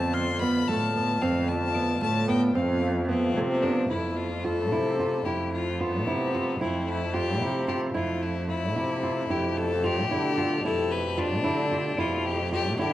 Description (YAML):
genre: contemporary instrumental, chamber music in an uneven meter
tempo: 223 BPM (eighths)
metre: 5/8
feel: straight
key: F lydian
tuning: A4 = 440 Hz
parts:
  - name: bright violin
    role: melody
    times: 0.0-12.9 s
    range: B3 to C6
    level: -30 LUFS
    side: left 5 dB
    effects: none
  - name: hand-pumped harmonium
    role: sustained chords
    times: 0.0-12.9 s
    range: B2 to G4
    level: -35 LUFS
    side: left 1 dB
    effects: none
  - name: nylon-string guitar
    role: arpeggios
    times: 0.0-12.9 s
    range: A3 to F4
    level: -29 LUFS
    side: right 2 dB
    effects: none
  - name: dark cello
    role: bass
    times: 0.0-12.9 s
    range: F2 to D3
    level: -29 LUFS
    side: right 1 dB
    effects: none
  - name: crotales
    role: texture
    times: 0.1-2.8, 9.8-12.9 s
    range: F6 to G7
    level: -41 LUFS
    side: equal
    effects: none
room: wet recital hall reverb, RT60 1.5 s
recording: worn, warbling old tape, cassette tape, warbly pitch drift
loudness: -24 LUFS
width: side -14 dB against mid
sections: 0.0-3.9 A section; 3.9-12.9 B section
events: none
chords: 0.0 Dm/F; 3.9 Fmaj7; 9.3 Gadd9/F